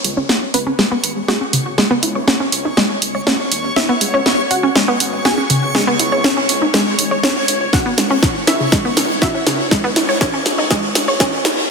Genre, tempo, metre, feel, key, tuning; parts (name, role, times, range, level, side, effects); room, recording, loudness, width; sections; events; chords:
progressive house; 121 BPM; 4/4; straight; A4 = 440 Hz
wide unison pluck; melody; 0.0-11.6 s; G#3 to G#5; -24 LUFS; equal; sidechain pumping, tape echo
analog pluck; arpeggios; 0.0-11.3 s; C#3 to C#5; -18 LUFS; equal; chorus, cassette tape, sidechain pumping, tape echo
dark detuned saw bass; bass; 0.0-11.6 s; G#1 to D#2; -30 LUFS; left 1 dB; sidechain pumping, high-pass filter
house drum kit; drums; 0.0-11.6 s; hi-hat, snare drum; -16 LUFS; equal; soft clipping on snare
backwards swelling texture; texture; 1.0-11.7 s; C#5 to C#6; -24 LUFS; equal; built-in reverb, sidechain pumping
electronic kick drum; drums; 7.7-11.3 s; -20 LUFS; equal
wet lush hall reverb, RT60 2.2 s; dense, heavily limited modern master, high-pass filter; -13 LUFS; side -5 dB against mid
0.0-11.7 A section
build-up 0.0-11.7; drum fill 0.0-11.7; filter sweep on synth arpeggio sound 0.0-11.7; filter sweep on synth pluck 0.0-11.7
0.0 E69/G#